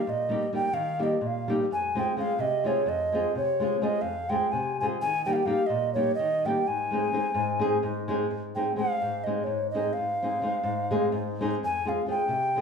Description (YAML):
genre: balkan folk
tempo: 255 BPM (eighths)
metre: 7/8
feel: straight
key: Ab major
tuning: A4 = 439 Hz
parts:
  - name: hollow alto ocarina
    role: melody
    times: 0.0-12.6 s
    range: Db5 to Ab5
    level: -27 LUFS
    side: right 1 dB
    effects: none
  - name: nylon-string guitar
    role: accompaniment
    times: 0.1-12.6 s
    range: F2 to Ab4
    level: -28 LUFS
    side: left 1 dB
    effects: none
room: wet large studio reverb, RT60 1.2 s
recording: band playing live in one room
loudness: -25 LUFS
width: side -6 dB against mid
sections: 0.0-8.3 A section; 8.3-12.6 B section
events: ocarina solo 8.3-12.6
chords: 0.0 Eb; 1.7 Fm; 5.0 Eb; 6.7 Ab; 11.6 Fm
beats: | 0.06 0.30 0.53 0.77 1.01 1.24 1.48 | 1.72 1.95 2.19 2.42 2.66 2.90 3.13 | 3.37 3.60 3.84 4.08 4.31 4.55 4.78 | 5.02 5.25 5.49 5.73 5.96 6.20 6.43 | 6.67 6.91 7.14 7.38 7.61 7.85 8.08 | 8.32 8.55 8.79 9.03 9.26 9.50 9.73 | 9.97 10.20 10.44 10.67 10.91 11.14 11.38 | 11.62 11.85 12.09 12.32 12.56